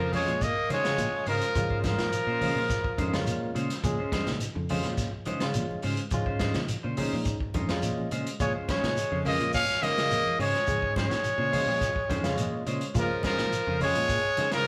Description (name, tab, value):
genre	afrobeat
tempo	105 BPM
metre	4/4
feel	straight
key	Bb minor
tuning	A4 = 440 Hz
part	breathy trumpet	melody	0.0-3.5, 8.4-14.7 s	Bb4 to F5	-30 LUFS	equal	none
part	breathy tenor saxophone	second line	0.0-3.5, 8.4-14.7 s	F3 to Db4	-37 LUFS	equal	none
part	clean electric guitar	arpeggios	0.0-14.7 s	Db3 to G3	-41 LUFS	equal	none
part	clean electric guitar	stabs	0.0-14.6 s	Ab3 to C5	-38 LUFS	equal	none
part	fingered electric bass	bass	0.0-14.5 s	F2 to Db3	-36 LUFS	equal	none
part	barky tine electric piano	accompaniment	0.1-14.7 s	Ab3 to Bb5	-39 LUFS	equal	none
part	crunchy breakbeat drum kit	drums	0.1-14.6 s	hi-hat, kick drum, snare drum	-36 LUFS	equal	none
part	congas	percussion	0.1-14.5 s	none	-40 LUFS	equal	none
part	shekere	percussion	0.1-14.5 s	none	-39 LUFS	equal	none
room	wet large studio reverb, RT60 0.9 s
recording	band playing live in one room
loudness	-28 LUFS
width	mono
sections	0.0-14.7 A section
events	tine electric piano fill 7.3-8.4, 11.8-13.0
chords	0.0 Bbm9